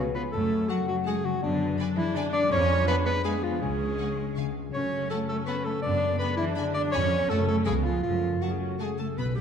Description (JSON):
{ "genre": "cinematic, playful, whimsical film cue", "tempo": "164 BPM", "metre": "3/4", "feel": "straight", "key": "F# minor", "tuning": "A4 = 440 Hz", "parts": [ { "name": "large celesta", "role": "melody", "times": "0.0-8.9 s", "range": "B4 to D6", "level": "-35 LUFS", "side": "left 6 dB", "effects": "none" }, { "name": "bright clarinet", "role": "second line", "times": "0.0-9.4 s", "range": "D4 to D5", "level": "-29 LUFS", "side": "right 1 dB", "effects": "none" }, { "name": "concert harp", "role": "arpeggios", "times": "0.0-9.4 s", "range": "F2 to G#5", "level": "-32 LUFS", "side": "left 8 dB", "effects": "none" }, { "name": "clear chamber cello section", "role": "bass", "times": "0.0-9.4 s", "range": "B2 to E#4", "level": "-32 LUFS", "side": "right 2 dB", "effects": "none" }, { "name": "warm studio viola section", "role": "accompaniment", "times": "0.3-9.4 s", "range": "A3 to B4", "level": "-37 LUFS", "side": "right 1 dB", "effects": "none" }, { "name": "rich chamber double bass section", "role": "bass", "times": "0.3-9.4 s", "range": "B1 to F#2", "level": "-32 LUFS", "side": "right 3 dB", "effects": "none" }, { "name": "rich symphonic violin section", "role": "melody", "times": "0.7-8.9 s", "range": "A5 to C#6", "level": "-50 LUFS", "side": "left 1 dB", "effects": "none" }, { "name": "clear chamber violin section", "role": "second line", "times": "0.7-9.4 s", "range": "D5 to B5", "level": "-43 LUFS", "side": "left 2 dB", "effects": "none" }, { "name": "mellow French horn section", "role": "sustained chords", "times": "8.8-9.4 s", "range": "G3 to B3", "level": "-44 LUFS", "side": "left 2 dB", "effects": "none" } ], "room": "wet scoring stage reverb, RT60 1.9 s", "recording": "dark, warm production", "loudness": "-24 LUFS", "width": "side -7 dB against mid", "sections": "0.3-9.2 A section", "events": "none", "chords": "0.3 F#m; 1.4 G#m7b5/F#; 2.5 Fdim7; 3.6 C#sus4; 4.4 C#; 4.7 F#m; 5.8 G#m7b5/F#; 6.9 C#7/E#; 7.3 F#m; 7.7 C#7; 8.0 F#m", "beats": "| 0.32 0.69 1.05 | 1.42 1.78 2.15 | 2.51 2.88 3.25 | 3.62 3.99 4.36 | 4.74 5.11 5.47 | 5.84 6.20 6.57 | 6.93 7.30 7.67 | 8.04 8.42 8.80 | 9.17" }